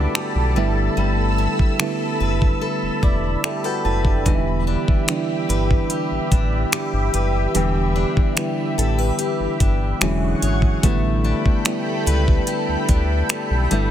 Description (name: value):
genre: contemporary R&B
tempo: 73 BPM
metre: 4/4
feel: straight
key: E dorian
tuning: A4 = 440 Hz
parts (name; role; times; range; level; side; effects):
- soft electric-piano-like synth keys; accompaniment; 0.0-13.9 s; C#3 to A5; -24 LUFS; right 2 dB; chorus
- lush unison pad; sustained chords; 0.0-13.9 s; G4 to E6; -26 LUFS; equal; chorus, phaser, sidechain pumping
- picked steel-string acoustic guitar; arpeggios; 0.0-13.9 s; E3 to C#5; -28 LUFS; left 9 dB; ping-pong delay
- round analog bass; bass; 0.0-13.9 s; E1 to D2; -21 LUFS; equal; none
- smooth R&B drum kit; drums; 0.2-13.9 s; finger snaps, hi-hat, kick drum; -20 LUFS; equal; soft clipping on snare
room: digital ambience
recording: dense, heavily limited modern master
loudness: -17 LUFS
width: side -11 dB against mid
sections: 0.0-13.9 A section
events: break 0.0-4.3; synth keys fill 2.6-4.3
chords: 0.0 A9sus4; 0.6 Em7; 10.0 E13; 10.8 A9sus4